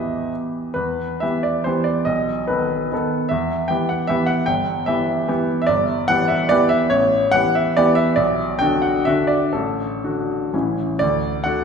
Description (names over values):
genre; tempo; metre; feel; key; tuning
classical, romantic triple-time dance for piano with dotted rhythms; 115-162 BPM; 3/4; rubato; E minor, D major from 5.7 s; A4 = 440 Hz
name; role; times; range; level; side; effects
clear baby grand piano; solo; 0.0-11.6 s; G1 to G5; -17 LUFS; equal; none
room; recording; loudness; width
wet scoring stage reverb, RT60 2.1 s; recorded in a church or concert hall; -17 LUFS; side -6 dB against mid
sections
0.8-11.0 A section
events
none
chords
0.0 Em; 2.1 B7; 3.3 Em; 4.5 Em/G; 6.9 A9; 8.2 Bm; 9.5 D/A; 10.5 A; 11.0 D